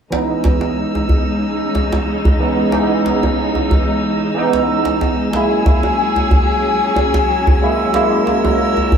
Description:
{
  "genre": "organic downtempo",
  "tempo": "92 BPM",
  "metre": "4/4",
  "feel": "swing 54% on 16ths",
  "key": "C# dorian",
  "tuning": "A4 = 441 Hz",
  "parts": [
    { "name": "barky tine electric piano", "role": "accompaniment", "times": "0.1-9.0 s", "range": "E3 to E4", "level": "-18 LUFS", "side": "right 2 dB", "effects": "overdrive, ensemble chorus, low-pass filter, tape echo" },
    { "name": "dark studio string section", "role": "sustained chords", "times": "0.1-9.0 s", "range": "C#3 to A#4", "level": "-18 LUFS", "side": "left 2 dB", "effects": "none" },
    { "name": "djembe", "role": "percussion", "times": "0.1-9.0 s", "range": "none", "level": "-17 LUFS", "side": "equal", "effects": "none" },
    { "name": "drifting glass-harmonics texture", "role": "texture", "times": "0.4-9.0 s", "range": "E6", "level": "-25 LUFS", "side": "right 5 dB", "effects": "chorus, built-in reverb" }
  ],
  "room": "wet echo chamber reverb, RT60 1.3 s, small room reverb",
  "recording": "echo-heavy mix, small room ambience",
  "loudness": "-13 LUFS",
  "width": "side -7 dB against mid",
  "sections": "0.1-9.0 A section",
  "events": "filter sweep on tine electric piano 0.1-9.0",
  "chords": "0.1 C#m7; 5.3 F#7",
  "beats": "| 0.12 0.77 1.43 2.08 | 2.73 3.38 4.04 4.69 | 5.34 5.99 6.64 7.30 | 7.95 8.60"
}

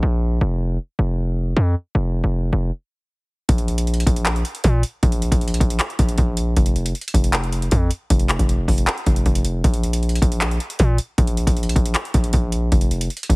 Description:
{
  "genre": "hip hop, trap",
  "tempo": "156 BPM",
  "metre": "4/4",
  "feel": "half-time",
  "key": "unclear",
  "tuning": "A4 = 440 Hz",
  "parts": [
    { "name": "distorted 808-style bass", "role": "bass", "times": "0.0-13.4 s", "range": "F1 to Bb2", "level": "-19 LUFS", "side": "equal", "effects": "distortion" },
    { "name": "booming analog drum machine", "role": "drums", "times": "3.5-13.4 s", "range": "handclaps, hi-hat, kick drum", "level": "-19 LUFS", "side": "equal", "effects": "none" }
  ],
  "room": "little or no reverb",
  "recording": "heavily compressed radio sound, multiband compression",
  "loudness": "-17 LUFS",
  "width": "side -28 dB against mid",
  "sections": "0.0-3.5 A section; 3.5-13.4 B section",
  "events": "stop 2.7-3.5",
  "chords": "none",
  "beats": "0.03 | 0.41 0.80 1.18 1.56 | 1.95 2.33 2.72 3.10 | 3.49 3.87 4.26 4.64 | 5.03 5.41 5.80 6.18 | 6.57 6.95 7.33 7.72 | 8.10 8.49 8.87 9.26 | 9.64 10.03 10.41 10.80 | 11.18 11.56 11.95 12.34 | 12.72 13.10"
}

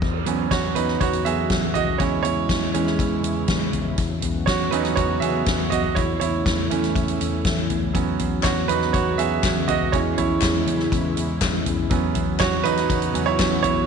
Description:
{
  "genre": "piano-driven pop",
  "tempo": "121 BPM",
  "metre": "4/4",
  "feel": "straight",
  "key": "unclear",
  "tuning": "A4 = 440 Hz",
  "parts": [
    { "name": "bright upright piano", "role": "accompaniment", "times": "0.0-13.9 s", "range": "E3 to E5", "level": "-23 LUFS", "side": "right 9 dB", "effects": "none" },
    { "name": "lush unison pad", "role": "sustained chords", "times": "0.5-13.9 s", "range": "C#3 to F#4", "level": "-28 LUFS", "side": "left 2 dB", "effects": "chorus" },
    { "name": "vintage muted picked electric bass", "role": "bass", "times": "0.0-13.8 s", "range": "E2", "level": "-26 LUFS", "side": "left 2 dB", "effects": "none" },
    { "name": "soft-mallet drum kit", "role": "drums", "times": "0.0-13.9 s", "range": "crash cymbal, hi-hat, kick drum, snare drum, toms", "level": "-25 LUFS", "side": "left 2 dB", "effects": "none" },
    { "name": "group handclap", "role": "percussion", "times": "8.4-13.5 s", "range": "none", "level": "-30 LUFS", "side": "left 16 dB", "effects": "none" }
  ],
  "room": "moderate echo chamber reverb, RT60 2.3 s",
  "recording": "1960s-style stereo with parts hard left and right, nothing above 10.5 kHz",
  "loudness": "-19 LUFS",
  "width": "side -6 dB against mid",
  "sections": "0.0-13.9 A section",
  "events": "upright piano solo 0.0-13.9",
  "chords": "0.0 Bsus2/E; 2.0 C#m/E; 4.0 Bsus2/E; 6.0 A/E; 7.9 Bsus2/E; 9.9 C#m/E; 11.9 Bsus2/E",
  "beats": "| 0.02 0.52 1.01 1.51 | 2.00 2.50 2.99 3.49 | 3.98 4.48 4.98 5.47 | 5.97 6.46 6.96 7.45 | 7.95 8.44 8.94 9.43 | 9.93 10.42 10.92 11.41 | 11.91 12.40 12.90 13.39"
}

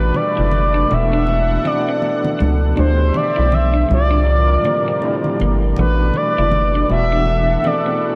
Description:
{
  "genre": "R&B, neo-soul",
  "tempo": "80 BPM",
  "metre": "4/4",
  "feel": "swing 60% on 16ths",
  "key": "A dorian",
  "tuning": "A4 = 445 Hz",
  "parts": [
    { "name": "expressive portamento lead", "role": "melody", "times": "0.0-8.2 s", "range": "B4 to E5", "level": "-21 LUFS", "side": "equal", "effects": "chorus, tape echo" },
    { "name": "overdriven tine electric piano", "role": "accompaniment", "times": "0.0-8.2 s", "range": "A2 to A4", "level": "-25 LUFS", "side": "equal", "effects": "medium tremolo" },
    { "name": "warm analog pad", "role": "sustained chords", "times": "0.0-8.2 s", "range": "C3 to F#5", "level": "-28 LUFS", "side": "equal", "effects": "chorus" },
    { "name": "rubbery square bass", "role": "bass", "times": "0.0-7.6 s", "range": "E1 to D2", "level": "-19 LUFS", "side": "equal", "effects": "none" },
    { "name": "clean electric guitar", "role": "second line", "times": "0.1-8.0 s", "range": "A3 to E4", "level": "-30 LUFS", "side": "equal", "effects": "none" },
    { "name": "congas", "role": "percussion", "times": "0.1-7.9 s", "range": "none", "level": "-29 LUFS", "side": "equal", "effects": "none" }
  ],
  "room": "moderate lush hall reverb, RT60 2.9 s",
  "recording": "dreamy mix soaked in reverb, lossy compression artefacts",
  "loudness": "-16 LUFS",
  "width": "mono",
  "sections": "0.0-8.2 A section",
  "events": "none",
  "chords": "0.0 A9sus4; 0.9 E9sus4; 2.8 D9sus4; 3.9 C9sus4; 5.8 A9sus4; 6.9 E9sus4",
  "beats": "0.52 1.27 2.02 | 2.77 3.52 4.27 5.02 | 5.77 6.52 7.27 8.02"
}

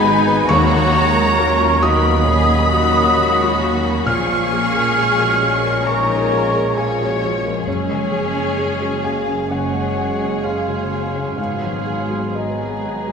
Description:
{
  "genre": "cinematic",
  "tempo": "66 BPM",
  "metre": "4/4",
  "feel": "rubato",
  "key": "Eb minor",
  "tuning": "A4 = 439 Hz",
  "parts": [
    { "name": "rich studio violin section", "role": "melody", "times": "0.0-13.1 s", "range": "Eb4 to Db5", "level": "-25 LUFS", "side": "left 4 dB", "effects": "none" },
    { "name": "dark cor anglais", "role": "second line", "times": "0.0-13.1 s", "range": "Db4 to F5", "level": "-24 LUFS", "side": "right 2 dB", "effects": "none" },
    { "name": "dark studio violin section", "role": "second line", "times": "0.0-13.1 s", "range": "Ab4 to Db6", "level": "-26 LUFS", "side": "left 1 dB", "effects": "none" },
    { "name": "mellow flute section", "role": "second line", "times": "0.0-13.1 s", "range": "Db5 to F6", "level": "-22 LUFS", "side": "equal", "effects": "none" },
    { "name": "felt-muted upright piano", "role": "accompaniment", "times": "0.0-13.1 s", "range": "Eb2 to F6", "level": "-23 LUFS", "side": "left 1 dB", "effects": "none" },
    { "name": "warm studio viola section", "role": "accompaniment", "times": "0.0-13.1 s", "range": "F3 to Eb4", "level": "-28 LUFS", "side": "right 2 dB", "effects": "none" },
    { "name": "mellow French horn section", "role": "sustained chords", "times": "0.0-13.1 s", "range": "Gb3 to Db4", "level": "-27 LUFS", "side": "left 2 dB", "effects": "none" },
    { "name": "concert harp", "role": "arpeggios", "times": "0.0-13.1 s", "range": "Gb2 to Db6", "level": "-28 LUFS", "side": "left 4 dB", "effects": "none" },
    { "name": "rich studio double bass section", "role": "bass", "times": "0.0-13.1 s", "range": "Gb1 to Eb2", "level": "-24 LUFS", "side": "right 2 dB", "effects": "none" },
    { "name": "warm studio cello section", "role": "bass", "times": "0.0-13.1 s", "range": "Eb2 to Bb2", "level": "-27 LUFS", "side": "right 3 dB", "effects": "none" },
    { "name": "timpani", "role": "percussion", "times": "0.5-1.8 s", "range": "Eb3", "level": "-23 LUFS", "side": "equal", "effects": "none" }
  ],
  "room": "wet scoring stage reverb, RT60 1.6 s",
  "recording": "heard from further back in the room",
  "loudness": "-15 LUFS",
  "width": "side -6 dB against mid",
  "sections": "0.0-13.1 A section",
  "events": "none",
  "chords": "0.5 Ebm7; 4.1 Bbm7; 7.7 Gbsus2; 11.4 Abm7",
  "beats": "| 0.48 1.37 2.27 3.17 | 4.06 4.96 5.86 6.77 | 7.67 8.58 9.50 10.43 | 11.38 12.34"
}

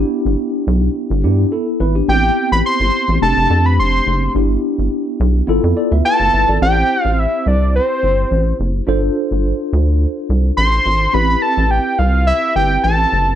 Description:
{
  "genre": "early-eighties boogie funk",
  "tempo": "106 BPM",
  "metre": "4/4",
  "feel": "straight",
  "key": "A minor",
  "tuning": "A4 = 440 Hz",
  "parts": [
    { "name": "mellow tine electric piano", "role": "accompaniment", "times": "0.0-13.4 s", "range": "A3 to F5", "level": "-19 LUFS", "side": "left 1 dB", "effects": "medium stereo tremolo" },
    { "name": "rubbery square bass", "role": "bass", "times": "0.0-13.3 s", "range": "F1 to G2", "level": "-16 LUFS", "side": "equal", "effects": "none" },
    { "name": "fat analog lead", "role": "melody", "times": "2.1-13.4 s", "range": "C5 to C6", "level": "-15 LUFS", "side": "equal", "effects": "slapback echo, plate reverb" }
  ],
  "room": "light reverb",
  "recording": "none",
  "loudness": "-13 LUFS",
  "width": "side -10 dB against mid",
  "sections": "0.0-6.6 A section; 6.6-13.4 B section",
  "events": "none",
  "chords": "0.0 Em7/G; 2.1 Am9; 3.2 F69; 4.3 Em7/G; 5.5 G13; 6.6 Am7; 8.9 G9sus4; 11.1 Am9",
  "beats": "0.39 0.95 1.52 | 2.09 2.65 3.22 3.78 | 4.35 4.92 5.48 6.05 | 6.61 7.18 7.75 8.31 | 8.88 9.44 10.01 10.58 | 11.14 11.71 12.27 12.84"
}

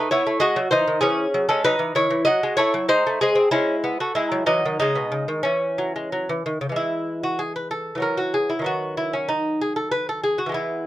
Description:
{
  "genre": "classical, baroque-style dance for lute",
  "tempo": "95 BPM",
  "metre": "3/4",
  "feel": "uneven beats, rubato",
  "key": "C# minor, E major from 6.8 s",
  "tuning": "A4 = 440 Hz",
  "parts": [
    { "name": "lute", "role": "solo", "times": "0.0-10.9 s", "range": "B2 to D#5", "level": "-20 LUFS", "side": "equal", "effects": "none" }
  ],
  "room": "little or no reverb",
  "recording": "close, detailed microphones",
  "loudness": "-20 LUFS",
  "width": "side -14 dB against mid",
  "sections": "0.0-6.8 A section; 6.8-10.9 A section",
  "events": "none",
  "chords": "0.4 G#7; 1.0 C#m/E; 2.3 D#m7b5/F#; 2.9 G#; 3.5 C#m/G#; 4.2 G#5; 4.8 C#m; 6.8 E; 8.0 F#5/E; 8.7 B/D#",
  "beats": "0.44 | 1.05 1.67 2.28 | 2.90 3.53 4.16 | 4.81 5.46 6.12 | 6.77 7.41 8.04 | 8.67 9.30 9.93 | 10.56"
}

